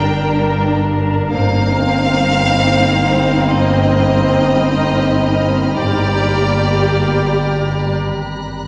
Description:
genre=cinematic, suspense film score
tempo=54 BPM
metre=4/4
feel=straight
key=unclear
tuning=A4 = 442 Hz
part: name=rich chamber violin section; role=melody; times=0.0-7.9 s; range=D5 to G5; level=-22 LUFS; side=equal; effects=none
part: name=rich chamber viola section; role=accompaniment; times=0.0-8.0 s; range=Bb3 to Bb4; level=-20 LUFS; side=equal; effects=none
part: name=flickering grainy texture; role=sustained chords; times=0.0-8.0 s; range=D4 to Bb5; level=-22 LUFS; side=equal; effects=built-in reverb
part: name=warm chamber cello section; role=bass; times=0.0-8.0 s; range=G2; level=-23 LUFS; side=equal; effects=none
part: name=saturated sub bass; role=drone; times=0.0-8.7 s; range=G1 to Ab1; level=-23 LUFS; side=equal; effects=none
part: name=warm chamber double bass section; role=bass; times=1.3-6.8 s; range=G1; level=-28 LUFS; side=equal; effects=none
part: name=rich chamber violin section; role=texture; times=1.3-8.7 s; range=Bb5 to F6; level=-30 LUFS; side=equal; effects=none
room=wet scoring stage reverb, RT60 1.9 s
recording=none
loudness=-15 LUFS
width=mono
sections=0.0-8.7 A section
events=break 8.0-8.7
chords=0.0 Gm; 1.3 Eb6/G; 5.8 Gm; 8.0 Abm69

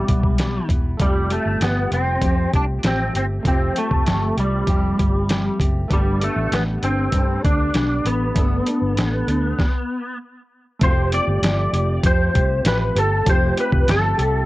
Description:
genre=indie pop, bedroom pop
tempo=98 BPM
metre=4/4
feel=straight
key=F lydian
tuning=A4 = 440 Hz
part: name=clean lap steel guitar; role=melody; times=0.0-14.5 s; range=G3 to D5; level=-22 LUFS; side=equal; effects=ensemble chorus, cassette tape, analog delay
part: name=nylon-string guitar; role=accompaniment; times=0.0-14.5 s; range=F3 to A4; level=-29 LUFS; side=left 2 dB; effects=wide subtle chorus, warbly pitch drift, cassette tape
part: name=vintage muted fingered electric bass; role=bass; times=0.1-14.4 s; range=E1 to G2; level=-22 LUFS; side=equal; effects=tube saturation
part: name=lo-fi sampler-style drum kit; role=drums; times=0.1-14.3 s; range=hi-hat, kick drum, snare drum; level=-20 LUFS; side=equal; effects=cassette tape
part: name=warm analog keys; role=accompaniment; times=1.0-14.5 s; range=G3 to B4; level=-30 LUFS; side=right 2 dB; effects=chorus, cassette tape
room=light reverb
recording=home recording on cassette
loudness=-17 LUFS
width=side -18 dB against mid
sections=0.0-10.8 A section; 10.8-14.5 B section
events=stop 9.6-10.8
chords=0.0 Cmaj7 (rootless); 1.0 Fadd9; 5.9 Gadd9; 10.8 Fadd9

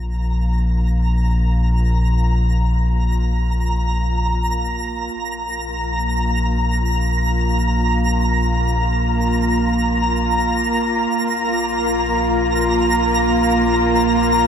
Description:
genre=ambient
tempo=free time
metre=none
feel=none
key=unclear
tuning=A4 = 440 Hz
part: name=round analog bass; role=bass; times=0.0-14.5 s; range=Bb1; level=-19 LUFS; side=equal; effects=none
part: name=bowed-like drone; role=drone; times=0.0-14.5 s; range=Bb3 to F4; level=-21 LUFS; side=right 1 dB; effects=built-in reverb
part: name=twinkling granular texture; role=texture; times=0.2-14.5 s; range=Bb5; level=-22 LUFS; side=equal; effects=built-in reverb
room=moderate huge ambient reverb, RT60 8.3 s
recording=none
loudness=-16 LUFS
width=side -8 dB against mid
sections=0.0-14.5 A section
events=fade-in on synth drone 0.0-14.5; fade-in on synth texture 0.0-14.5; fade-out on analog synth bass 0.0-14.5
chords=0.0 Bb5

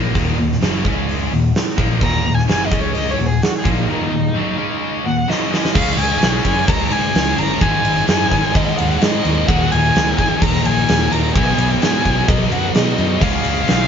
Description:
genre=hard rock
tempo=129 BPM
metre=4/4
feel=straight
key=Eb minor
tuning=A4 = 440 Hz
part: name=distorted electric guitar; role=riff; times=0.0-13.9 s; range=Eb2 to Db4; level=-25 LUFS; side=right 7 dB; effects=overdrive
part: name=high-gain distorted guitar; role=riff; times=0.0-13.9 s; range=Eb2 to Db4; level=-22 LUFS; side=left 6 dB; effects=distortion
part: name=fingered electric bass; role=bass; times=0.0-13.8 s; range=Eb1 to B2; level=-21 LUFS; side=equal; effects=none
part: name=huge arena drum kit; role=drums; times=0.2-13.8 s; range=crash cymbal, hi-hat, kick drum, ride cymbal, snare drum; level=-18 LUFS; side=right 1 dB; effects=none
part: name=warm violin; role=melody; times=2.0-13.9 s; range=Eb4 to Bb5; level=-21 LUFS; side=left 1 dB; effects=none
part: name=scooped high-gain guitar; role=riff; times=5.7-13.9 s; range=Eb2 to Ab4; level=-26 LUFS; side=left 1 dB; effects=distortion
room=moderate studio reverb, RT60 0.5 s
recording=band playing live in one room, nothing above 7.5 kHz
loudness=-14 LUFS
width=side -7 dB against mid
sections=0.0-5.7 A section; 5.7-13.9 B section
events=violin solo 0.0-5.7; drum fill 5.3-5.7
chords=0.0 Ebm; 0.8 Db5; 1.3 Ebm; 2.7 Db5; 3.2 Ebm; 4.6 Db5; 5.0 Ebm; 5.7 Db; 7.6 Ab; 9.5 Ebm; 11.3 B; 13.2 Db

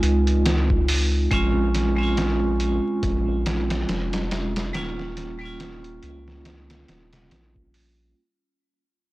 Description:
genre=trip hop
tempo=70 BPM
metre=4/4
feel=swing 57% on 16ths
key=unclear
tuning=A4 = 440 Hz
part: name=vibraphone with hard mallets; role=accompaniment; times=0.0-8.2 s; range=G3 to F4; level=-25 LUFS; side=right 1 dB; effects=tremolo, tape echo
part: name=round analog bass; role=bass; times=0.0-8.1 s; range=Eb1 to Db2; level=-24 LUFS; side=equal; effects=none
part: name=trip hop sampler-style drum kit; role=drums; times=0.0-8.0 s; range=hi-hat, kick drum, snare drum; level=-27 LUFS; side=equal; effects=studio ambience
room=digital ambience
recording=blown-out, overdriven recording, vinyl crackle, overdrive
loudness=-20 LUFS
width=side -18 dB against mid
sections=0.0-8.2 A section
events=fade-out 0.0-8.2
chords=0.0 Dbmaj7; 1.3 Bbm7; 4.7 Eb7

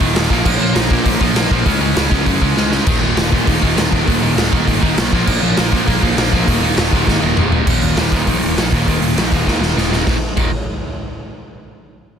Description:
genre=punk rock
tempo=200 BPM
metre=4/4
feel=straight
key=unclear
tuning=A4 = 442 Hz
part: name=distorted electric guitar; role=riff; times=0.0-10.5 s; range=Eb2 to Db4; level=-16 LUFS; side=right 1 dB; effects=distortion
part: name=fuzz picked electric bass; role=bass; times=0.0-10.5 s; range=Eb1 to Gb2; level=-20 LUFS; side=equal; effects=overdrive
part: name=raw garage drum kit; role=drums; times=0.0-10.4 s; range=crash cymbal, hi-hat, kick drum, snare drum, toms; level=-17 LUFS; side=equal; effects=none
room=little or no reverb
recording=dense, heavily limited modern master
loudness=-13 LUFS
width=side -8 dB against mid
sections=0.0-7.7 A section; 7.7-10.1 B section; 10.1-11.3 C section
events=drum fill 2.6-2.9, 7.1-7.7, 9.5-10.1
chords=0.3 Bb5; 1.7 Db5; 2.9 Eb5; 5.1 Bb5; 6.5 Eb5

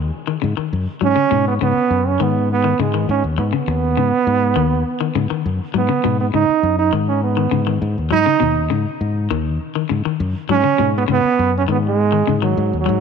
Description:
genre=afrobeat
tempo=101 BPM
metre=4/4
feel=straight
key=G# minor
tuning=A4 = 442 Hz
part: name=fingered electric bass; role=bass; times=0.0-13.0 s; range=D#2 to G#2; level=-20 LUFS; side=left 2 dB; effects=none
part: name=electric guitar at the edge of break-up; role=arpeggios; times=0.3-13.0 s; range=B2 to F#3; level=-22 LUFS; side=left 13 dB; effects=none
part: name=warm trombone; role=melody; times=1.0-13.0 s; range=F#3 to D#4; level=-18 LUFS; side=right 8 dB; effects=none
room=moderate plate reverb, RT60 3.5 s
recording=1960s-style stereo with parts hard left and right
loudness=-15 LUFS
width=side -6 dB against mid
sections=0.0-13.0 A section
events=none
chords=0.0 G#m7

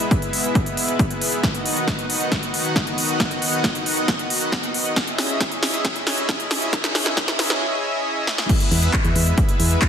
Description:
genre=uplifting trance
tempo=136 BPM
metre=4/4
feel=straight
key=E major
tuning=A4 = 440 Hz
part: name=supersaw pad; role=sustained chords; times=0.0-9.9 s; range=D#3 to F#5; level=-23 LUFS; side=equal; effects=sidechain pumping
part: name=big-room dance drum kit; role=drums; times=0.0-9.9 s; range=crash cymbal, handclaps, hi-hat, snare drum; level=-22 LUFS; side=equal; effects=sidechain pumping on hats, sidechain pumping on cymbals
part: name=electronic kick drum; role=drums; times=0.1-9.9 s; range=none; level=-22 LUFS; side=equal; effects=none
part: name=solid FM bass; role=bass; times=8.7-9.8 s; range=E2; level=-18 LUFS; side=equal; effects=sidechain pumping
room=moderate digital room reverb, RT60 0.9 s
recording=dense, heavily limited modern master, high-pass filter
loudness=-18 LUFS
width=side -8 dB against mid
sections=0.0-8.5 A section; 8.5-9.9 B section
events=build-up 0.0-8.5; drum fill 1.4-7.6, 8.3; drop 8.5-9.9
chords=0.0 E; 1.4 B/D#; 5.0 C#madd9; 8.5 E

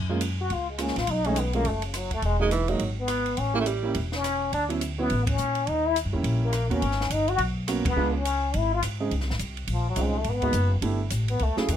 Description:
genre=jazz, small-group swing and bop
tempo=209 BPM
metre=4/4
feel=swing 61% on 8ths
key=unclear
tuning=A4 = 439 Hz
part: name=upright bass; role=bass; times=0.0-11.8 s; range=E1 to A#2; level=-27 LUFS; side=equal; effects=none
part: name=warm grand piano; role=accompaniment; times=0.1-11.7 s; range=C#3 to G#4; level=-29 LUFS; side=right 4 dB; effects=none
part: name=compact cocktail drum kit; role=drums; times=0.2-11.8 s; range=hi-hat, kick drum, ride cymbal, rim click, snare drum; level=-34 LUFS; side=right 2 dB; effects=none
part: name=trombone with plunger mute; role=melody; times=0.4-11.8 s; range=Db3 to F#4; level=-27 LUFS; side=left 3 dB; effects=none
part: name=clear tenor saxophone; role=second line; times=2.4-4.0 s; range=E3 to Bb3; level=-28 LUFS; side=right 6 dB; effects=none
room=light reverb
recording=close, detailed microphones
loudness=-24 LUFS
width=side -10 dB against mid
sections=0.0-9.1 A section; 9.1-11.8 B section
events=band accent 5.2, 7.8; trombone solo 9.1-11.8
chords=0.0 F#maj9; 1.1 B7sus2; 2.2 Emaj9#11; 3.4 A7b9; 4.5 Dmaj13; 5.7 D#7b9; 6.8 G#m11; 8.0 C#7b9; 9.1 Dbmaj9; 10.3 Abm7; 10.8 Gadd9

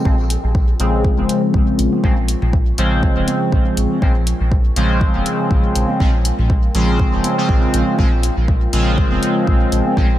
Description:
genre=dub techno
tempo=121 BPM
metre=4/4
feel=swing 55% on 16ths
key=Bb minor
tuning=A4 = 440 Hz
part: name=deep dark ambient pad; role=sustained chords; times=0.0-10.2 s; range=Ab3 to Db6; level=-28 LUFS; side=left 1 dB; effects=chorus, built-in reverb, sidechain pumping
part: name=resonant sweep polysynth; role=stabs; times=0.0-10.1 s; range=Db3 to C4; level=-18 LUFS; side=equal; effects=chorus, phaser, sidechain pumping, dub echo
part: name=round analog bass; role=bass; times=0.1-10.2 s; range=F1 to Bb1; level=-19 LUFS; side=equal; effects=sidechain pumping
part: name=electronic kick drum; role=drums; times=0.1-10.1 s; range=none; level=-16 LUFS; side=equal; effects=none
part: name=electronic hi-hat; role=drums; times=0.3-9.8 s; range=none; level=-25 LUFS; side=left 2 dB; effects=none
part: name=electronic congas and toms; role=percussion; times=1.2-9.9 s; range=none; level=-30 LUFS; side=equal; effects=none
room=light reverb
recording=echo-heavy mix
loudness=-14 LUFS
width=side -13 dB against mid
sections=0.1-10.2 A section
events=none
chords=0.1 Bbm7

